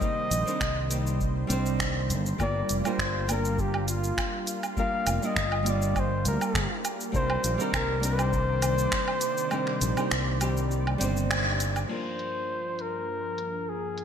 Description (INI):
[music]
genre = sunset chillout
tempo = 101 BPM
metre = 4/4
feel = swing 53% on 16ths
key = C minor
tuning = A4 = 437 Hz
[part]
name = trumpet with bucket mute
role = melody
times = 0.0-14.0 s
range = F4 to F5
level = -31 LUFS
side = left 1 dB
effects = digital delay
[part]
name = nylon-string guitar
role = accompaniment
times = 0.0-14.0 s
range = F3 to C5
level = -33 LUFS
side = moving between left 4 dB and right 4 dB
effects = auto-pan, digital delay
[part]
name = lush unison pad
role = sustained chords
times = 0.0-14.0 s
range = G2 to D5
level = -34 LUFS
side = right 1 dB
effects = chorus
[part]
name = electronic kick drum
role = drums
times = 0.0-9.1 s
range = none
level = -33 LUFS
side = equal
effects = studio reverb
[part]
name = smooth R&B drum kit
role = drums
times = 0.0-14.0 s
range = cabasa, crash cymbal, finger snaps, hi-hat, woodblock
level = -32 LUFS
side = right 2 dB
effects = low-pass filter on perc, studio reverb, low-pass filter on hats, low-pass filter on snare, low-pass filter on cymbals, gated reverb
[part]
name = fingered electric bass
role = bass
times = 0.3-11.8 s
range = F1 to D2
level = -29 LUFS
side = equal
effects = tube saturation
[sound]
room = moderate lush hall reverb, RT60 2.3 s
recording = bright 1980s-style digital production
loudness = -25 LUFS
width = side -8 dB against mid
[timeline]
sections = 0.0-11.9 A section; 11.9-14.0 B section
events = kick drops out 9.5-11.9; band accent 11.3; filter sweep on analog synth pad 11.9-14.0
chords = 0.0 Cm9; 2.4 Gm7; 7.1 Cm9; 11.9 Gm7